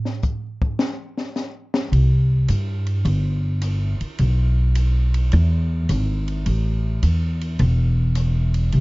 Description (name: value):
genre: jazz piano trio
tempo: 106 BPM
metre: 4/4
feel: swing 68% on 8ths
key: C major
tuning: A4 = 440 Hz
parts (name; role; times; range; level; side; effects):
- open jazz drum kit; drums; 0.1-8.8 s; hi-hat, kick drum, ride cymbal, rim click, snare drum; -28 LUFS; left 1 dB; none
- upright bass; bass; 1.9-8.8 s; E1 to G2; -17 LUFS; equal; none
room: little or no reverb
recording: dark, warm production, nothing above 7.6 kHz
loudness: -18 LUFS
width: side -23 dB against mid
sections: 0.0-1.9 A section; 1.9-8.8 B section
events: drum solo 0.0-1.9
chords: none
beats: 0.24 0.80 1.37 | 1.93 2.50 3.07 3.63 | 4.20 4.76 5.33 5.90 | 6.46 7.03 7.60 8.16 | 8.73